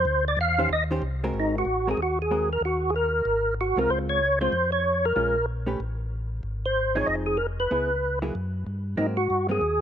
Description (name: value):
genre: soul jazz organ trio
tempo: 188 BPM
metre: 4/4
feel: swing 62% on 8ths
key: Ab mixolydian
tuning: A4 = 441 Hz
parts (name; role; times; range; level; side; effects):
- percussive tonewheel organ; melody; 0.0-9.8 s; Eb4 to F5; -24 LUFS; equal; slow rotary speaker, chorus vibrato
- mellow tonewheel organ; bass; 0.0-9.8 s; F1 to Ab2; -30 LUFS; equal; slow rotary speaker
- vintage hollow-body jazz guitar; accompaniment; 0.6-9.6 s; Eb3 to C5; -30 LUFS; right 1 dB; none
room: little or no reverb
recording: rough home demo mix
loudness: -23 LUFS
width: side -9 dB against mid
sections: 0.0-1.3 A section; 1.3-9.8 B section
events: tonewheel organ solo 0.0-1.3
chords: 0.1 Dm7; 0.7 Eb6; 1.3 Ab9; 2.6 Eb5; 3.3 Ab69; 3.9 Dbmaj7; 5.2 Bbm7; 5.8 N.C.; 6.4 Ab; 7.1 Fm7; 7.7 Dbm7; 8.3 N.C.; 9.0 Ab9